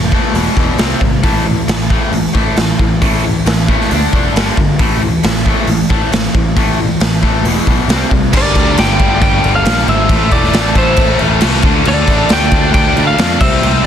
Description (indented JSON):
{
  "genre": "hard rock",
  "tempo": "136 BPM",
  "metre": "4/4",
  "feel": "straight",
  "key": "A minor",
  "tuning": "A4 = 439 Hz",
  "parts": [
    { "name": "cranked stack guitar", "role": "riff", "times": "0.0-13.9 s", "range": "E2 to D4", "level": "-20 LUFS", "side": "right 11 dB", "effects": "overdrive, phaser" },
    { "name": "tight distorted guitar", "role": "riff", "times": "0.0-13.9 s", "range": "E2 to D4", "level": "-18 LUFS", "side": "left 12 dB", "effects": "distortion" },
    { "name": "modern bright picked electric bass", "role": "bass", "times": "0.0-13.8 s", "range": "E1 to F2", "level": "-17 LUFS", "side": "equal", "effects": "none" },
    { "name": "raw garage drum kit", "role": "drums", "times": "0.1-13.7 s", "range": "crash cymbal, hi-hat, kick drum, snare drum", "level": "-13 LUFS", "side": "equal", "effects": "none" },
    { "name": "octave-fuzz lead guitar", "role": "second line", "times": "8.3-13.8 s", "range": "A4 to D5", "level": "-25 LUFS", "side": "right 1 dB", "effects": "none" },
    { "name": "heavy high-gain guitar", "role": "riff", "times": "8.3-13.9 s", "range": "G2 to D4", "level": "-20 LUFS", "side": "right 1 dB", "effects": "distortion" },
    { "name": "lightly driven lead guitar", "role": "melody", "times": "8.4-13.9 s", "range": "C5 to G5", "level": "-16 LUFS", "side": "equal", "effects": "slapback echo" }
  ],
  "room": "small room ambience",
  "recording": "dense, heavily limited modern master",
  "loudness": "-10 LUFS",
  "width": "side -9 dB against mid",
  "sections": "0.0-8.3 A section; 8.3-13.9 B section",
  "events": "none",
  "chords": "0.3 E5; 0.8 C5; 1.2 A5; 3.9 D5; 4.3 G5; 4.8 A5; 7.5 E5; 7.9 C5; 8.3 Gm; 10.1 Am; 11.6 D5",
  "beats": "0.34 0.79 | 1.24 1.68 2.13 2.57 | 3.02 3.46 3.90 4.35 | 4.79 5.24 5.68 6.12 | 6.57 7.01 7.45 7.89 | 8.34 8.78 9.22 9.66 | 10.10 10.54 10.98 11.42 | 11.86 12.30 12.74 13.18 | 13.62"
}